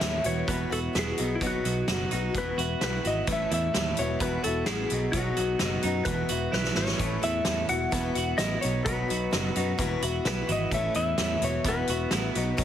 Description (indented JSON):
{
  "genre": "folk rock and heartland rock",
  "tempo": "129 BPM",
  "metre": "4/4",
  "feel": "straight",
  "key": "unclear",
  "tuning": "A4 = 439 Hz",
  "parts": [
    { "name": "clean lap steel guitar", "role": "melody", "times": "0.0-12.6 s", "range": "E4 to F#5", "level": "-31 LUFS", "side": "left 2 dB", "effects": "digital delay" },
    { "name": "picked acoustic archtop guitar", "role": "accompaniment", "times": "0.0-12.6 s", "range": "E2 to A4", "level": "-33 LUFS", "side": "left 6 dB", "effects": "none" },
    { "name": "twelve-string electric guitar", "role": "riff", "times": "0.0-12.6 s", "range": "E2 to F#4", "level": "-32 LUFS", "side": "right 6 dB", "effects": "none" },
    { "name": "picked electric bass", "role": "bass", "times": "0.0-12.6 s", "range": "E1 to F#2", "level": "-32 LUFS", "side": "right 1 dB", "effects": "none" },
    { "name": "loose indie drum kit", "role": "drums", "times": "0.0-12.6 s", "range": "hi-hat, kick drum, snare drum", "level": "-31 LUFS", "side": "equal", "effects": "none" }
  ],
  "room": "light reverb, small room ambience",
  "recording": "heavily compressed radio sound, multiband compression",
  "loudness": "-25 LUFS",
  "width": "side -10 dB against mid",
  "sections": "0.0-12.6 A section",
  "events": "drum fill 6.5-7.0",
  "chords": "0.2 Esus2; 1.2 B; 2.3 Esus2; 3.3 A; 4.0 Esus2; 4.9 B; 6.1 Esus2; 7.0 A; 7.7 Esus2; 8.6 B; 9.8 Esus2; 10.7 A; 11.4 Esus2"
}